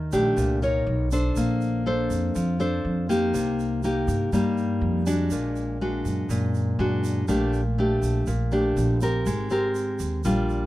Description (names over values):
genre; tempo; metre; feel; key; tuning
bossa nova; 122 BPM; 4/4; straight; Bb major; A4 = 439 Hz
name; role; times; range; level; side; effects
nylon-string guitar; accompaniment; 0.0-10.7 s; Bb2 to Db5; -24 LUFS; left 1 dB; none
upright bass; bass; 0.0-10.7 s; Ab1 to G2; -27 LUFS; right 1 dB; none
egg shaker; percussion; 0.1-10.7 s; none; -44 LUFS; right 10 dB; none
room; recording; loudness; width
little or no reverb; dry, close 1970s-style studio recording; -22 LUFS; side -16 dB against mid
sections
0.0-10.7 A section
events
none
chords
0.0 Ebmaj7#11; 0.9 Bmaj9; 1.4 Bbmaj9; 3.3 Cm7; 5.3 Bbaug7; 7.3 Bbmaj13; 9.3 Abmaj9